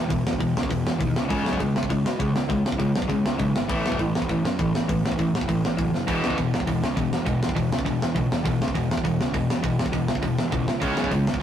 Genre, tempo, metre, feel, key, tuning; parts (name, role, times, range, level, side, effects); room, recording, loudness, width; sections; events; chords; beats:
punk rock; 202 BPM; 4/4; straight; E major; A4 = 440 Hz
fuzz picked electric bass; bass; 0.0-11.4 s; E1 to B2; -29 LUFS; right 2 dB; overdrive
distorted electric guitar; riff; 0.1-11.3 s; E2 to C#4; -25 LUFS; left 2 dB; overdrive
tight metal drum kit; drums; 0.1-11.4 s; hi-hat, kick drum, snare drum; -26 LUFS; equal
tight distorted guitar; riff; 6.1-11.4 s; E2 to C#4; -32 LUFS; right 6 dB; distortion
moderate stone room reverb, RT60 1.0 s; rough rehearsal-room recording, warm saturation; -21 LUFS; side -10 dB against mid
0.0-11.4 A section
drum fill 5.9
0.0 E5; 1.2 C#5; 3.7 A5; 6.1 E5; 10.7 C#5
| 0.10 0.40 0.70 1.00 | 1.30 1.60 1.90 2.20 | 2.50 2.80 3.10 3.40 | 3.70 4.00 4.29 4.59 | 4.89 5.19 5.49 5.78 | 6.08 6.38 6.67 6.97 | 7.27 7.57 7.86 8.16 | 8.46 8.75 9.05 9.35 | 9.64 9.94 10.23 10.53 | 10.83 11.12 11.42